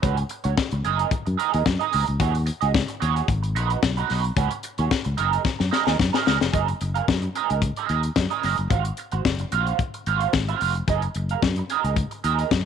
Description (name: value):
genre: disco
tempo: 111 BPM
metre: 4/4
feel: straight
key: F# major, Gb lydian from 6.5 s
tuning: A4 = 442 Hz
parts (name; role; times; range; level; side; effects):
- electric guitar at the edge of break-up; accompaniment; 0.0-12.6 s; C#4 to Gb5; -25 LUFS; right 14 dB; wah, analog chorus
- fingered electric bass; bass; 0.0-12.6 s; E#1 to F#2; -25 LUFS; left 1 dB; none
- tight funk drum kit; drums; 0.0-12.6 s; hi-hat, kick drum, snare drum; -24 LUFS; left 5 dB; none
room: light reverb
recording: 1960s-style stereo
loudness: -21 LUFS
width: side -7 dB against mid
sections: 0.0-6.5 A section; 6.5-12.7 B section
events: drum fill 5.5-6.5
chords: 0.0 C#7sus4; 0.8 F#69; 2.2 D#m7; 3.3 G#m7; 4.4 C#7sus4; 5.2 F#69; 6.5 Gb69; 8.7 Ab13; 10.9 Gb69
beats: | 0.03 0.57 1.12 1.66 | 2.20 2.74 3.29 3.83 | 4.37 4.91 5.45 6.00 | 6.54 7.08 7.62 8.17 | 8.71 9.25 9.80 10.34 | 10.88 11.43 11.97 12.51